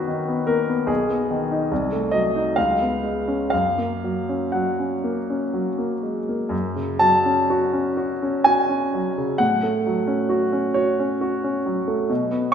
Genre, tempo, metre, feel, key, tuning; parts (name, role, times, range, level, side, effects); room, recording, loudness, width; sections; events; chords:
classical, romantic nocturne for solo piano; 59-75 BPM; 3/4; rubato; F# major, F# minor from 6.5 s; A4 = 440 Hz
warm grand piano; solo; 0.0-12.5 s; B1 to A5; -19 LUFS; equal
wet recital hall reverb, RT60 1.6 s; minimal, uncompressed stereo recording; -19 LUFS; side -8 dB against mid
0.0-6.5 A section; 6.5-12.5 B section
0.0 B/F#; 0.9 G#m/B; 1.7 Cdim7; 2.6 C#7; 3.5 F#; 6.5 F#m; 9.4 F#m/A